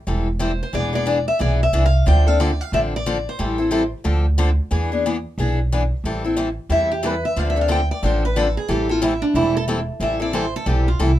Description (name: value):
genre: acoustic string swing (jazz manouche)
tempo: 181 BPM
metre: 4/4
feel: swing 60% on 8ths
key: A minor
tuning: A4 = 439 Hz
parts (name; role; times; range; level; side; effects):
- picked steel-string acoustic guitar; accompaniment; 0.1-11.1 s; D3 to A4; -22 LUFS; left 3 dB; none
- upright bass; bass; 0.1-11.2 s; E1 to E2; -20 LUFS; right 1 dB; none
- picked steel-string acoustic guitar; melody; 0.4-3.9, 6.7-11.2 s; D4 to G5; -23 LUFS; right 1 dB; none
room: light reverb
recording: minimal, uncompressed stereo recording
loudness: -18 LUFS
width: side -13 dB against mid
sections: 0.0-6.0 A section; 6.0-11.2 B section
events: steel-string acoustic guitar solo 6.0-11.2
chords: 0.0 Am7; 0.7 E7; 2.1 Dm7; 3.4 Am7; 4.0 Dm7; 4.7 E7; 6.0 Am7; 7.4 Dm7; 8.7 Am7